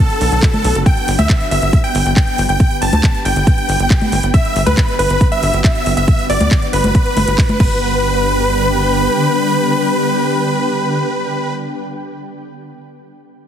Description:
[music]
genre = uplifting trance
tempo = 138 BPM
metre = 4/4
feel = straight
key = G major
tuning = A4 = 440 Hz
[part]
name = big supersaw lead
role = melody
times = 0.0-11.5 s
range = A4 to A5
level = -18 LUFS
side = equal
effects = sidechain pumping, ping-pong delay
[part]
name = wide unison pluck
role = second line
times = 0.0-11.5 s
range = A4 to A5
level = -25 LUFS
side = moving between left 3 dB and right 3 dB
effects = none
[part]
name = shimmering ambient pad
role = sustained chords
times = 0.1-11.5 s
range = D3 to G4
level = -20 LUFS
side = left 1 dB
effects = chorus, built-in reverb, sidechain pumping
[part]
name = house drum kit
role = drums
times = 0.1-7.7 s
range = congas, crash cymbal, handclaps, hi-hat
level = -21 LUFS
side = equal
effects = none
[part]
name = tight sequencer bass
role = bass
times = 0.2-9.1 s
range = F#1 to D2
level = -18 LUFS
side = equal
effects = sidechain pumping
[part]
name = electronic kick drum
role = drums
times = 0.4-7.7 s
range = none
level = -12 LUFS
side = equal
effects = none
[sound]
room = light reverb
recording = heavily compressed radio sound, multiband compression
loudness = -12 LUFS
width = side -9 dB against mid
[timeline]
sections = 0.0-7.8 A section; 7.8-11.3 B section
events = drop 0.0-7.8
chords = 0.0 Bm; 0.9 G

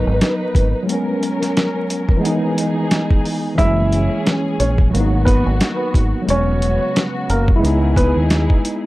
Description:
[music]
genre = hip hop, boom-bap hip-hop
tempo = 89 BPM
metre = 4/4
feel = swing 57% on 16ths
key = G# minor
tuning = A4 = 440 Hz
[part]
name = tine electric piano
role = accompaniment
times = 0.0-8.9 s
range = E3 to A#4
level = -21 LUFS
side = equal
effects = overdrive, fast stereo tremolo, cassette tape, high-pass filter, low-pass filter
[part]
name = dark studio string section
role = stabs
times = 0.0-8.9 s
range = C#3 to B4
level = -24 LUFS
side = equal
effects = high-pass filter, low-pass filter, analog delay
[part]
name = deep dub fingered electric bass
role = bass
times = 0.0-8.5 s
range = E1 to D#2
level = -18 LUFS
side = equal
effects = tube saturation
[part]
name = dusty soul sampler-style drum kit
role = drums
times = 0.2-8.8 s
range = hi-hat, kick drum, snare drum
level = -17 LUFS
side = equal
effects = none
[part]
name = clear upright piano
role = melody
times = 3.6-8.1 s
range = A#3 to E5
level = -21 LUFS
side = equal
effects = high-pass filter, low-pass filter, analog delay
[sound]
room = light reverb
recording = dry, gritty hardware recording, vinyl crackle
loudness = -14 LUFS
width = side -18 dB against mid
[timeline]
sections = 0.0-8.9 A section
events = none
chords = 0.0 G#m9; 0.9 G#m11/F#; 2.2 Emaj7; 3.6 F#9; 4.9 G#m9; 6.3 E69; 7.6 C#m9

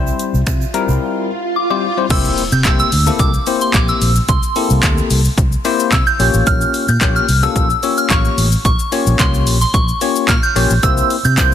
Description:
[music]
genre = dance-pop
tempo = 110 BPM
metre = 4/4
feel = straight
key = unclear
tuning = A4 = 440 Hz
[part]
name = soft synth bell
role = melody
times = 0.0-11.5 s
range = E5 to G6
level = -19 LUFS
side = right 2 dB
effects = chorus, phaser, ping-pong delay
[part]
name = bell-like tine electric piano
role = accompaniment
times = 0.0-11.5 s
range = G3 to Db5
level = -20 LUFS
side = left 6 dB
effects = analog chorus
[part]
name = vintage muted fingered electric bass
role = bass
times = 0.0-11.5 s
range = A1 to C3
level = -16 LUFS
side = equal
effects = sidechain pumping
[part]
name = swell and impact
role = sound effects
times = 0.5-4.3 s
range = none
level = -24 LUFS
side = right 2 dB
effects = none
[part]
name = egg shaker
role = percussion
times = 0.1-1.0, 10.8-11.5 s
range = none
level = -31 LUFS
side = right 17 dB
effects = none
[part]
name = punchy analog drum machine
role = drums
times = 0.2-11.5 s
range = crash cymbal, finger snaps, handclaps, hi-hat, kick drum, shaker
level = -17 LUFS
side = equal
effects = overdrive
[sound]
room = light reverb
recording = dense, heavily limited modern master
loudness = -12 LUFS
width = side -10 dB against mid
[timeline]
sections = 0.0-2.1 A section; 2.1-11.5 B section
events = swell 0.5-2.1; impact 2.1-4.3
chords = 0.0 C; 2.1 C7; 6.2 Bbm6; 10.8 C7

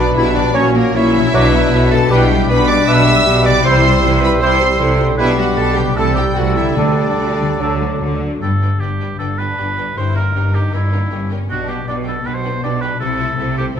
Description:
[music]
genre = classical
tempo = 156 BPM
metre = 4/4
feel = rubato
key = G major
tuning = A4 = 440 Hz
[part]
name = warm symphonic violin section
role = melody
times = 0.0-13.8 s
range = A#4 to E6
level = -21 LUFS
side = equal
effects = none
[part]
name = bright clarinet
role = second line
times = 0.0-8.0 s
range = A#3 to E5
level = -21 LUFS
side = left 1 dB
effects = none
[part]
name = rich studio violin section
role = second line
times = 0.0-13.8 s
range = A#3 to E5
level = -25 LUFS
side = left 2 dB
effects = none
[part]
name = rich symphonic viola section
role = accompaniment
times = 0.0-13.8 s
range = D3 to B4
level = -26 LUFS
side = right 2 dB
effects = none
[part]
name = clear trombone section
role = sustained chords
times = 0.0-7.7 s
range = F#3 to E4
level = -25 LUFS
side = right 4 dB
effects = none
[part]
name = dark French horn section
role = sustained chords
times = 0.0-8.2 s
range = D4 to A4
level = -22 LUFS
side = left 4 dB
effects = none
[part]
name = concert harp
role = arpeggios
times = 0.0-13.8 s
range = G2 to C#5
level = -23 LUFS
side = left 11 dB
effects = none
[part]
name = mellow trumpet section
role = stabs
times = 0.0-7.7 s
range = A4 to C#5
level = -22 LUFS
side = right 1 dB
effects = none
[part]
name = clear symphonic cello section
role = bass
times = 0.0-13.8 s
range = G2 to D3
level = -21 LUFS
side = right 1 dB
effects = none
[part]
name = warm symphonic double bass section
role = bass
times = 0.0-13.8 s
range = G1 to D2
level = -20 LUFS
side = right 2 dB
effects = none
[part]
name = mellow bassoon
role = accompaniment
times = 0.5-8.2 s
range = F#3 to G3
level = -23 LUFS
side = right 4 dB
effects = none
[part]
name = concert flute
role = second line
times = 0.6-8.2 s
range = C#6 to E6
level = -26 LUFS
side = left 1 dB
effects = none
[part]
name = warm oboe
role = second line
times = 0.6-13.8 s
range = E4 to D5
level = -24 LUFS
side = right 2 dB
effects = none
[part]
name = timpani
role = percussion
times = 6.8-7.4 s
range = D3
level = -23 LUFS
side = left 2 dB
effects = none
[sound]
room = moderate recital hall reverb, RT60 1.3 s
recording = none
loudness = -12 LUFS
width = side -8 dB against mid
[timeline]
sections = 0.0-8.4 A section; 8.4-13.8 B section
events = none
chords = 0.0 Bm; 0.5 F#7/A#; 1.3 Bm; 2.1 G/B; 3.7 C; 5.2 G/B; 6.0 Am7/C; 6.8 Dsus4; 7.6 D; 8.4 G; 10.0 Gdim7; 11.5 G/B; 13.0 Am/C

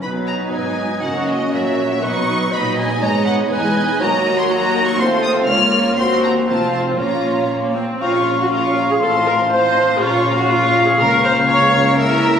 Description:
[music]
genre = quick classical-period movement for symphony orchestra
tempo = 121 BPM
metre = 2/4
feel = straight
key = B major, Bb minor from 4.0 s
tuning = A4 = 440 Hz
[part]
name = rich studio violin section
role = melody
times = 0.0-12.4 s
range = D#5 to F6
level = -23 LUFS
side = left 2 dB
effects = none
[part]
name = dark clarinet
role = second line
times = 0.0-12.4 s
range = B4 to F5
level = -20 LUFS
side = equal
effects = none
[part]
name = rich chamber violin section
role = second line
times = 0.0-12.4 s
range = F4 to Db6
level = -27 LUFS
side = equal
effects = none
[part]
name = rich chamber viola section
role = accompaniment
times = 0.0-12.4 s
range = F#3 to Db5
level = -20 LUFS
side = right 1 dB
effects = none
[part]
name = dark French horn section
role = sustained chords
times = 0.0-12.4 s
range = A3 to Gb4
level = -23 LUFS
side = left 2 dB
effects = none
[part]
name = rich studio double bass section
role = bass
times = 0.0-12.4 s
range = E1 to Eb2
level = -25 LUFS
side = right 2 dB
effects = none
[part]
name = warm symphonic cello section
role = bass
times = 0.0-12.4 s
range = Db2 to Db3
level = -26 LUFS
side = equal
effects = none
[part]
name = mellow hollow silver concert flute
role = second line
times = 8.0-12.4 s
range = Bb5 to Db6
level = -22 LUFS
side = left 3 dB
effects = none
[sound]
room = wet recital hall reverb, RT60 1.8 s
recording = recorded on a phone in the room, club reverb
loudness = -14 LUFS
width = side -8 dB against mid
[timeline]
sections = 0.0-8.0 A section; 8.0-12.4 B section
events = none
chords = 0.0 B; 1.0 F#7; 2.0 B; 3.0 G#m; 4.0 Ebm; 5.0 F7/Eb; 5.5 Bbm/Db; 6.0 Cm7b5/Eb; 6.5 F; 7.0 Bbm; 9.0 F7/A; 10.0 Bbm; 11.0 Bbm/Db

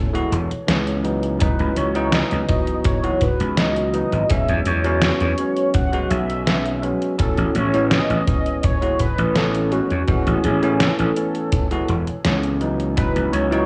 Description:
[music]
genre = vaporwave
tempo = 83 BPM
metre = 4/4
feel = straight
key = A lydian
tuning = A4 = 442 Hz
[part]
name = warm velvety synth lead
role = melody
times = 0.0-13.7 s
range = F#4 to F#5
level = -28 LUFS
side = equal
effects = chorus, tape echo
[part]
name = bell-like tine electric piano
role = accompaniment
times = 0.0-13.7 s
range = E3 to F#4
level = -26 LUFS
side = equal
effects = subtle chorus
[part]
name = warbly tape-like pad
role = sustained chords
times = 0.0-13.7 s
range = C#3 to G#5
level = -34 LUFS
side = equal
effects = none
[part]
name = detuned 8-bit digital drum machine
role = drums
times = 0.1-13.7 s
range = hi-hat, snare drum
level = -25 LUFS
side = equal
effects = gated reverb
[part]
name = gritty slap bass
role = bass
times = 0.3-13.7 s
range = E1 to E2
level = -24 LUFS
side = equal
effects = overdrive
[part]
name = kick drum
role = drums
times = 1.4-13.1 s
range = none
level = -24 LUFS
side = equal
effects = none
[sound]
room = light reverb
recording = cassette tape, small room ambience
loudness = -20 LUFS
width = mono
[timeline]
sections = 0.0-13.7 A section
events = none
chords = 0.0 Amaj7; 1.0 C#m11; 4.3 E69; 7.2 Amaj7; 12.6 C#m11

